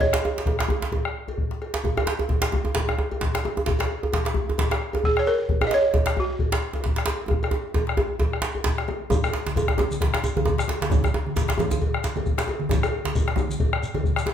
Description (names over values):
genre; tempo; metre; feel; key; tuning
west african traditional, West African drum ensemble; 132 BPM; 4/4; swing 57% on 16ths; F# major pentatonic; A4 = 440 Hz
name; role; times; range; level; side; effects
balafon; melody; 0.0-0.7, 5.1-8.6 s; F#4 to D#5; -23 LUFS; right 1 dB; none
bombo; percussion; 0.0-14.3 s; none; -26 LUFS; left 1 dB; none
djembe; percussion; 0.0-14.3 s; none; -31 LUFS; left 2 dB; none
djembe; percussion; 0.0-14.3 s; none; -26 LUFS; right 2 dB; none
cowbell; percussion; 0.1-14.3 s; none; -34 LUFS; left 2 dB; none
congas; percussion; 9.1-14.3 s; none; -30 LUFS; right 2 dB; none
shekere; percussion; 9.1-14.3 s; none; -35 LUFS; left 2 dB; none
room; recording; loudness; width
wet large studio reverb, RT60 0.9 s; band playing live in one room; -22 LUFS; side -9 dB against mid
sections
0.0-9.1 A section; 9.1-14.3 B section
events
drum fill 7.3-9.1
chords
none